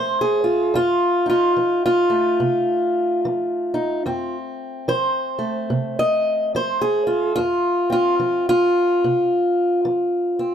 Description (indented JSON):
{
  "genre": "acoustic country blues, solo or duo",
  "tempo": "72 BPM",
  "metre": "4/4",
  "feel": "swing 61% on 8ths",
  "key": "F mixolydian",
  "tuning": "A4 = 441 Hz",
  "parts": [
    { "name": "fingerpicked acoustic archtop guitar", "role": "solo", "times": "0.0-10.5 s", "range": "F2 to Eb5", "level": "-18 LUFS", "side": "equal", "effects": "none" }
  ],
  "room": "light reverb",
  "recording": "none",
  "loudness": "-17 LUFS",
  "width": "side -8 dB against mid",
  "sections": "0.0-10.5 A section",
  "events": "none",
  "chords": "0.0 F7",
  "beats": "| 0.74 1.57 2.41 3.24 | 4.07 4.90 5.72 6.55 | 7.38 8.21 9.04 9.87"
}